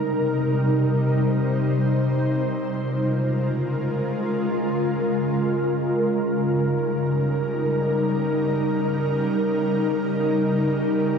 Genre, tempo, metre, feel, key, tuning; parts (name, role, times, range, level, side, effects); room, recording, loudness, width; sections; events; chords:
hip hop; free time; A4 = 441 Hz
ethereal airy pad; solo; 0.0-11.2 s; C3 to C5; -20 LUFS; equal; ensemble chorus, built-in reverb
moderate lush hall reverb, RT60 2.7 s; -20 LUFS; side -6 dB against mid
0.0-11.2 A section
0.0 Cm7; 2.7 Bbm7; 6.3 Eb7